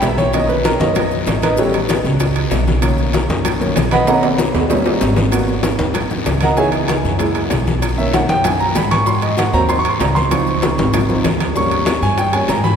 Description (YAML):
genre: Afro-Cuban jazz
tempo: 192 BPM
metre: 4/4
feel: straight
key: B major, G# minor from 5.3 s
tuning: A4 = 440 Hz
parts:
  - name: warm grand piano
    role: accompaniment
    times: 0.0-12.8 s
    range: D#3 to C#6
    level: -18 LUFS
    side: right 1 dB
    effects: none
  - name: upright bass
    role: bass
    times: 0.0-12.8 s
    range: G#1 to G#2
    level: -19 LUFS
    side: equal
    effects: none
  - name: bongos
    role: percussion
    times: 0.0-12.8 s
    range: none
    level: -24 LUFS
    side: left 5 dB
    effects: none
  - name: congas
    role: percussion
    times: 0.0-12.8 s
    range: none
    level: -22 LUFS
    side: left 2 dB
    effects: none
  - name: guiro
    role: percussion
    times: 0.0-12.8 s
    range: none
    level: -31 LUFS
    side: left 4 dB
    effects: none
  - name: maracas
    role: percussion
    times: 0.0-12.8 s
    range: none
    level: -36 LUFS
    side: left 5 dB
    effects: none
  - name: timbales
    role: percussion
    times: 0.0-12.6 s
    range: none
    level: -23 LUFS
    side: right 4 dB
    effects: none
room: wet cathedral reverb, RT60 4.4 s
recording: recorded in a church or concert hall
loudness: -13 LUFS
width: side -7 dB against mid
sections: 0.0-5.3 A section; 5.3-12.8 A section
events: grand piano solo 0.0-12.8; drum fill 4.1-5.3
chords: 0.3 Bmaj7; 1.6 A9; 2.8 Bmaj7; 4.7 D#7; 5.3 G#m9; 6.6 C#m7; 7.2 F#7; 7.8 Bmaj7; 9.1 G#7; 10.3 C#maj7; 11.6 D#7